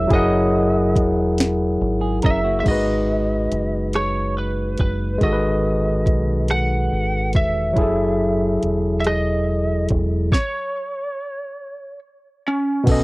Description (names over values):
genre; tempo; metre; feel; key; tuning
slow six-eight R&B; 47 BPM (dotted quarters); 6/8; straight; unclear; A4 = 440 Hz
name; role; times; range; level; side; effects
lightly driven lead guitar; melody; 0.0-13.0 s; C#4 to F#5; -24 LUFS; right 1 dB; cassette tape, plate reverb
barky tine electric piano; accompaniment; 0.0-13.0 s; B2 to F#5; -20 LUFS; left 1 dB; plate reverb
deep dub fingered electric bass; bass; 0.0-13.0 s; E1 to B1; -23 LUFS; equal; none
smooth R&B drum kit; drums; 0.1-13.0 s; crash cymbal, hi-hat, kick drum, rim click, snare drum; -19 LUFS; equal; none
semi-hollow electric guitar; second line; 2.0-2.8 s; A#3 to A#4; -27 LUFS; right 4 dB; plate reverb
room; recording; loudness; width
light reverb; home recording on cassette; -18 LUFS; side -22 dB against mid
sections
0.0-2.7 A section; 2.7-12.9 B section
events
stop 10.3-12.9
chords
0.0 F#13; 2.7 G#m7; 7.8 F#m9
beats
| 0.10 1.38 | 2.66 3.94 | 5.21 6.49 | 7.76 9.04 | 10.32 11.60 | 12.87